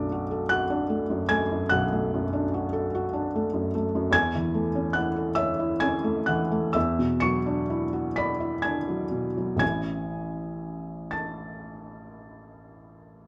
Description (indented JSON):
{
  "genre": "classical, romantic nocturne for solo piano",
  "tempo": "39-52 BPM (dotted quarters)",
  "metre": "12/8",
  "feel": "rubato",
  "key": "A major",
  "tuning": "A4 = 441 Hz",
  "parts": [
    { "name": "felt-muted upright piano", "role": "solo", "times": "0.0-13.3 s", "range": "A1 to C#7", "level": "-27 LUFS", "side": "equal", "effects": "none" }
  ],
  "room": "light reverb",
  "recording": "close, detailed microphones",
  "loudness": "-27 LUFS",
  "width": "mono",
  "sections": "0.0-13.3 A section",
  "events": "none",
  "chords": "0.0 Bm7; 4.1 A/E; 6.7 E9; 9.6 A"
}